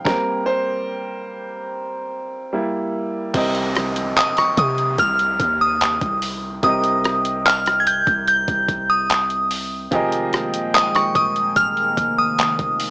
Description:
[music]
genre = contemporary R&B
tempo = 73 BPM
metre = 4/4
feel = straight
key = unclear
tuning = A4 = 440 Hz
[part]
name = clear concert grand piano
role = accompaniment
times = 0.0-12.9 s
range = C3 to Eb5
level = -24 LUFS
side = right 1 dB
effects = none
[part]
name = chorused pulse-width pad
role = sustained chords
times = 0.0, 9.9-12.9 s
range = Eb3 to G5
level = -28 LUFS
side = equal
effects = sidechain pumping
[part]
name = dusty soul sampler-style drum kit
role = drums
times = 0.1-12.9 s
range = crash cymbal, handclaps, hi-hat, kick drum, rim click, snare drum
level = -22 LUFS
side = equal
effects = cassette tape
[part]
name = long sustained 808-style bass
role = bass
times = 3.3-12.9 s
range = Eb1 to C3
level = -29 LUFS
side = equal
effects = none
[part]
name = downlifter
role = sound effects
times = 3.3-9.9 s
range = none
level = -33 LUFS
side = equal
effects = none
[part]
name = glassy synth bell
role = melody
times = 4.2-12.8 s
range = Db6 to Ab6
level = -17 LUFS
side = equal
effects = chorus, cassette tape
[sound]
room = light reverb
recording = home recording on cassette, small speaker sound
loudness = -17 LUFS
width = side -27 dB against mid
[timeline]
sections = 0.0-3.3 A section; 3.3-12.9 B section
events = grand piano solo 0.0-3.3; stop 0.1-3.3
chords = 0.1 Gmadd11; 2.5 Gm6; 3.3 Cm7; 9.9 Fm11

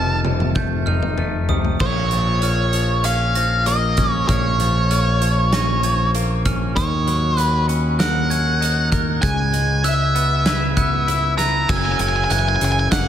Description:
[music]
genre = post-rock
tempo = 97 BPM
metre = 4/4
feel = straight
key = unclear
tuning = A4 = 437 Hz
[part]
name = octave-fuzz lead guitar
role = melody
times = 0.0-13.1 s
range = C#5 to A#5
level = -21 LUFS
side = equal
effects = distortion, digital delay
[part]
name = glockenspiel with brass mallets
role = arpeggios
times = 0.0-13.1 s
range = Eb6 to A#6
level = -29 LUFS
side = right 6 dB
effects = digital delay
[part]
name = twangy electric guitar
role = arpeggios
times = 0.0-13.1 s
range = F2 to B4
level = -26 LUFS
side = left 4 dB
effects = digital delay
[part]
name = growling fingered electric bass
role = bass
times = 0.0-13.1 s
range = F1 to D#2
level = -20 LUFS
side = equal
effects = overdrive
[part]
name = big rock drum kit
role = drums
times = 0.2-13.1 s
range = crash cymbal, hi-hat, kick drum, snare drum, toms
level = -23 LUFS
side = equal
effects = none
[sound]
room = light reverb, studio reverb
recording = none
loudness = -16 LUFS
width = side -10 dB against mid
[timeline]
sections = 0.0-1.8 A section; 1.8-11.7 B section; 11.7-13.1 A section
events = drum fill 0.0-1.8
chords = 0.0 F7; 1.8 A#m; 6.8 D#m7; 9.2 C#m7; 11.7 F#7(no3)

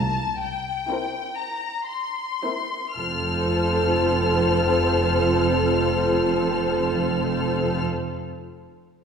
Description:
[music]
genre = classical, slow romantic movement for string orchestra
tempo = 36-45 BPM (dotted quarters)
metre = 12/8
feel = rubato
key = F major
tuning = A4 = 436 Hz
[part]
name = rich studio violin section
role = melody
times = 0.0-7.8 s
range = G5 to F6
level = -28 LUFS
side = left 4 dB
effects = none
[part]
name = rich studio cello section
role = bass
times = 0.0-7.8 s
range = C2 to F2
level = -28 LUFS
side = right 2 dB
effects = none
[part]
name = rich studio double bass section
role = bass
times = 0.0-7.8 s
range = F1 to C2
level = -29 LUFS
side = right 4 dB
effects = none
[part]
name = rich studio violin section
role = second line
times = 0.9-7.8 s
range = A4 to C5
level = -24 LUFS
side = left 2 dB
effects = none
[part]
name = warm studio viola section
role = accompaniment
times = 0.9-7.8 s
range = C4 to F4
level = -27 LUFS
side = right 3 dB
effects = none
[sound]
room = wet scoring stage reverb, RT60 1.9 s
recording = heard from further back in the room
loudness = -20 LUFS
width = side -6 dB against mid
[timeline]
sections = 0.0-3.0 A section; 3.0-9.0 B section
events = slowing down 0.0-3.0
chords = 0.0 C7; 3.0 F

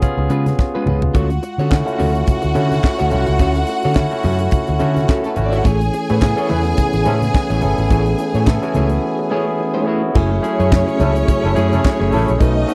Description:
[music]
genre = disco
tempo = 107 BPM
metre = 4/4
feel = swing 56% on 16ths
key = unclear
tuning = A4 = 441 Hz
[part]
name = barky tine electric piano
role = accompaniment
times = 0.0-12.7 s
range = G#3 to C#5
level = -24 LUFS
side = equal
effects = overdrive
[part]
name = tight funk drum kit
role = drums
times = 0.0-12.7 s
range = crash cymbal, handclaps, hi-hat, kick drum, snare drum, toms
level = -18 LUFS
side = equal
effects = none
[part]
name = congas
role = percussion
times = 0.0-12.6 s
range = none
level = -30 LUFS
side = equal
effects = none
[part]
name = electric guitar at the edge of break-up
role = accompaniment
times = 0.2-12.7 s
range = G#3 to C#5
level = -25 LUFS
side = equal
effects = vibrato effect
[part]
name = fingered electric bass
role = bass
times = 0.2-12.6 s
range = F#1 to D3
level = -21 LUFS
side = equal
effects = none
[part]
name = clear studio string section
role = second line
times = 1.2-12.7 s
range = A3 to G#5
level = -26 LUFS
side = equal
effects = none
[part]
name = mellow tonewheel organ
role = sustained chords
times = 5.6-12.7 s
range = E3 to G#4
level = -26 LUFS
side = equal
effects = chorus vibrato, slow rotary speaker
[part]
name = warm horn section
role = stabs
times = 6.1-7.2, 11.0-12.3 s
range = A3 to C#5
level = -26 LUFS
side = equal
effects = none
[sound]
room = little or no reverb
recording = dry, close 1970s-style studio recording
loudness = -17 LUFS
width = mono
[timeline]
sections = 0.0-1.1 A section; 1.1-10.2 B section; 10.2-12.7 C section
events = drum fill 0.6-1.1; break 9.0-10.2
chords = 0.0 C#7; 1.1 Dmaj7; 5.7 Amaj7; 10.2 F#m9

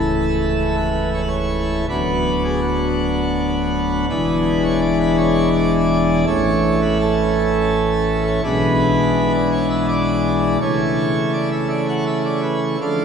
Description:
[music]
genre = classical, chorale-style piece for pipe organ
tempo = 82 BPM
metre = 3/4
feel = rubato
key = A major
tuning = A4 = 437 Hz
[part]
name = pipe organ, plenum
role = solo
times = 0.0-13.0 s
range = C#1 to F#5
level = -16 LUFS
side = equal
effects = none
[sound]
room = wet church reverb, RT60 3.4 s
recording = heard from further back in the room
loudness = -16 LUFS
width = side -6 dB against mid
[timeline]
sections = 0.0-13.0 A section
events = none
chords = 0.0 A/C#; 1.9 Bm/D; 4.1 E7; 6.3 A; 8.4 E7/B; 10.6 A/C#

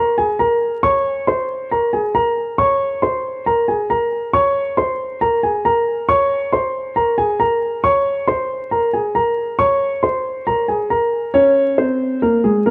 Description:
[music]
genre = hip hop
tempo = 137 BPM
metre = 4/4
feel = half-time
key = unclear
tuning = A4 = 439 Hz
[part]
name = dark concert grand piano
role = solo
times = 0.0-12.7 s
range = Ab3 to Db6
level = -18 LUFS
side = equal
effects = low-pass filter
[sound]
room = moderate recital hall reverb, RT60 1.6 s, small room reverb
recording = worn, warbling old tape, cassette tape, vinyl crackle, warbly pitch drift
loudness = -18 LUFS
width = mono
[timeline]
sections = 0.0-11.3 A section; 11.3-12.7 B section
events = none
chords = 0.0 Abadd9

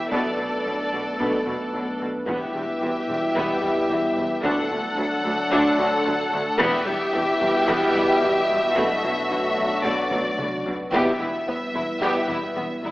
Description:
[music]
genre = cinematic, hybrid orchestral and electronic film score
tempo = 111 BPM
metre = 4/4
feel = straight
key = E minor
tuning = A4 = 440 Hz
[part]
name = warm symphonic violin section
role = melody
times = 0.0-12.9 s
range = D5 to F#5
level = -27 LUFS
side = left 1 dB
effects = none
[part]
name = warm symphonic violin section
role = second line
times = 0.0-12.9 s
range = B3 to A4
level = -27 LUFS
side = left 1 dB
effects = none
[part]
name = dark analog pad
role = sustained chords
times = 0.0-12.9 s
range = F#3 to D5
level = -31 LUFS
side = equal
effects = chorus
[part]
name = saturated sub bass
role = bass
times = 0.0-12.9 s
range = D1 to B1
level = -47 LUFS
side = equal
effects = none
[part]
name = rich symphonic viola section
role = accompaniment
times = 0.1-12.9 s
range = D3 to D4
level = -28 LUFS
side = equal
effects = none
[part]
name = clear trombone section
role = sustained chords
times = 0.1-12.2 s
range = B2 to A3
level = -29 LUFS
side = right 1 dB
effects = none
[part]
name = mellow French horn section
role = sustained chords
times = 0.1-12.2 s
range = A3 to E4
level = -29 LUFS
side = left 1 dB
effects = none
[part]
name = rich symphonic cello section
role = bass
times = 0.1-12.9 s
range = D2 to B2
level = -32 LUFS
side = equal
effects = none
[part]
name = rich symphonic double bass section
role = bass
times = 0.1-12.9 s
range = E1 to D2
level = -37 LUFS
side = right 1 dB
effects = none
[part]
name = taiko ensemble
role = drums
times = 0.1-12.5 s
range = none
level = -39 LUFS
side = equal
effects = none
[sound]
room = wet scoring stage reverb, RT60 1.6 s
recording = AM radio sound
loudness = -20 LUFS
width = side -18 dB against mid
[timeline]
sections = 0.0-10.9 A section; 10.9-12.9 B section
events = drum fill 10.1-10.9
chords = 0.1 Bm7; 2.3 Em; 4.4 D; 6.6 Em; 8.8 Bm7; 10.9 Em

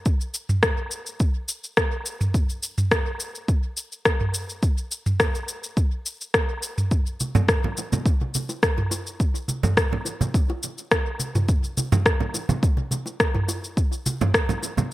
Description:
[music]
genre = downtempo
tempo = 105 BPM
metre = 4/4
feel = straight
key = none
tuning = none
[part]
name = afro-pop drum kit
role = drums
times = 0.1-14.9 s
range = rim click, shaker, toms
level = -23 LUFS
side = equal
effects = none
[part]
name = electronic kick drum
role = drums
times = 0.1-14.5 s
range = none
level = -22 LUFS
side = equal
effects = overdrive
[part]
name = congas and bongos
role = percussion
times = 7.2-14.9 s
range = none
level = -26 LUFS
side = right 2 dB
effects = analog delay
[sound]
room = moderate spring reverb, RT60 1.8 s, digital ambience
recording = echo-heavy mix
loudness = -21 LUFS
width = side -16 dB against mid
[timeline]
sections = 0.0-14.9 A section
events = none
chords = none

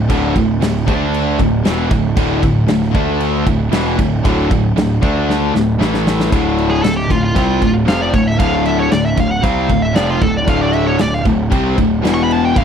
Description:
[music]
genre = heavy metal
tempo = 116 BPM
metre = 4/4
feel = straight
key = D minor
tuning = A4 = 437 Hz
[part]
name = distorted electric guitar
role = riff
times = 0.0-12.6 s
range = D2 to D4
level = -19 LUFS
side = left 12 dB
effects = distortion
[part]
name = heavy high-gain guitar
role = riff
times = 0.0-12.6 s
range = D2 to D4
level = -19 LUFS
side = right 10 dB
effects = distortion
[part]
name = overdriven electric guitar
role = riff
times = 0.0-12.6 s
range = D2 to D4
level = -23 LUFS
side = equal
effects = none
[part]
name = fuzz picked electric bass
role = bass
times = 0.0-12.6 s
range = D1 to D2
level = -20 LUFS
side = equal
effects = overdrive
[part]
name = big rock drum kit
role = drums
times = 0.1-12.6 s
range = crash cymbal, kick drum, snare drum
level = -19 LUFS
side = equal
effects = none
[part]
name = high-gain lead guitar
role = melody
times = 6.7-12.6 s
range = F4 to C#6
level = -19 LUFS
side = equal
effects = distortion, slapback echo
[sound]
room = studio ambience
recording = dry, close 1970s-style studio recording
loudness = -12 LUFS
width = side -8 dB against mid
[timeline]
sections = 0.0-6.3 A section; 6.3-12.6 B section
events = drum fill 5.3-6.3; lead electric guitar solo 6.3-12.6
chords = 0.0 D5; 5.8 A5; 6.3 Dm; 12.0 E5

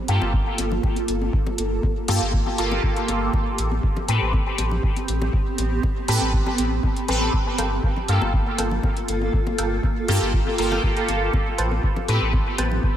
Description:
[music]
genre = dub techno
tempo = 120 BPM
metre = 4/4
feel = straight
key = unclear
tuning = A4 = 440 Hz
[part]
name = granular cloud pad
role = sustained chords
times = 0.0-13.0 s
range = Bb3 to A4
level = -28 LUFS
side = right 1 dB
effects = built-in reverb, sidechain pumping
[part]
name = resonant sweep polysynth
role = stabs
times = 0.1-12.2 s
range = Bb3 to B4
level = -26 LUFS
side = equal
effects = chorus, phaser, sidechain pumping, dub echo
[part]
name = warm sub bass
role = bass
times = 0.1-12.8 s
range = G1 to A2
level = -24 LUFS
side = equal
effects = sidechain pumping
[part]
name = electronic hi-hat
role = drums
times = 0.1-12.7 s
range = none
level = -29 LUFS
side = left 1 dB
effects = none
[part]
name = bongos and congas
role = percussion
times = 0.2-12.8 s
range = none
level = -35 LUFS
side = left 4 dB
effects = sidechain pumping on perc, dub echo
[part]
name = electronic kick drum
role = drums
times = 0.3-12.9 s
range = none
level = -23 LUFS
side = equal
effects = none
[part]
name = wavetable chord stab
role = riff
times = 7.6-12.8 s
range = A4 to A5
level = -32 LUFS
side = right 2 dB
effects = sidechain pumping, dub echo
[sound]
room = moderate lush hall reverb, RT60 2.0 s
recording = dreamy mix soaked in reverb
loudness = -20 LUFS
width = side -10 dB against mid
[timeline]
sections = 0.0-13.0 A section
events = none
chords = 0.0 Gm9; 3.3 Am9; 7.3 Gm9; 11.3 Am9

